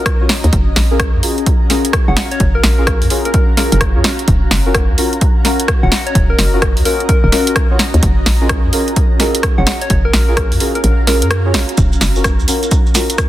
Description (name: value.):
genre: UK garage, two-step garage.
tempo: 128 BPM.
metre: 4/4.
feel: swing 64% on 16ths.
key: unclear.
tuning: A4 = 438 Hz.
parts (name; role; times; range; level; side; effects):
soft struck synth lead; melody; 0.0-11.3 s; Bb4 to Gb5; -22 LUFS; left 2 dB; chorus, tape echo.
deep mellow chord stab; stabs; 0.0-13.3 s; Db4 to Db5; -20 LUFS; left 1 dB; chorus, tape echo.
granular cloud pad; texture; 0.0-13.3 s; Db4 to Bb5; -24 LUFS; equal; built-in reverb, sidechain pumping.
electronic kick drum; drums; 0.1-13.3 s; none; -15 LUFS; equal; overdrive.
garage drum kit; drums; 0.1-13.3 s; hi-hat, rim click, snare drum; -17 LUFS; equal; soft clipping on snare.
hollow knocking FM bass; bass; 0.4-12.5 s; Eb1 to Gb2; -14 LUFS; equal; sidechain pumping.
maracas; percussion; 11.8-13.3 s; none; -24 LUFS; right 4 dB; none.
room: digital ambience.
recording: dense, heavily limited modern master.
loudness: -11 LUFS.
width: side -14 dB against mid.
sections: 0.0-13.3 A section.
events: kick drops out 10.8-11.8.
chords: 0.0 Ebm7; 0.5 Gbmaj7; 4.3 Ebm7; 8.0 Gbmaj7; 11.8 Ebm7.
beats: 0.06 | 0.53 0.99 1.46 1.93 | 2.40 2.87 3.34 3.81 | 4.28 4.75 5.21 5.68 | 6.15 6.62 7.09 7.56 | 8.03 8.49 8.96 9.43 | 9.90 10.37 10.84 11.31 | 11.78 12.24 12.71 13.18.